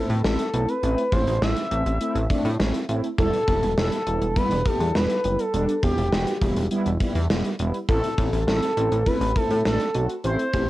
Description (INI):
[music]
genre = synth-pop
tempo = 102 BPM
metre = 4/4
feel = straight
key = unclear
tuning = A4 = 443 Hz
[part]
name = expressive synth lead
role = melody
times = 0.0-10.7 s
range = G4 to E5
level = -25 LUFS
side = equal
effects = chorus, cassette tape
[part]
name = mellow synth brass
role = accompaniment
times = 0.0-10.7 s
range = G3 to G4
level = -28 LUFS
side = right 1 dB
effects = chorus, cassette tape
[part]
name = chorused synth bass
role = bass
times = 0.1-10.7 s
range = E1 to A2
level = -24 LUFS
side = equal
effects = none
[part]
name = gated 80s drum kit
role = drums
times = 0.1-10.7 s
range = hi-hat, kick drum, snare drum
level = -26 LUFS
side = equal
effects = none
[sound]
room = moderate booth ambience, RT60 0.2 s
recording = home recording on cassette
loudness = -20 LUFS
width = side -16 dB against mid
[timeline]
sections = 0.0-10.7 A section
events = none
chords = 0.0 Am; 3.2 Em; 7.9 Am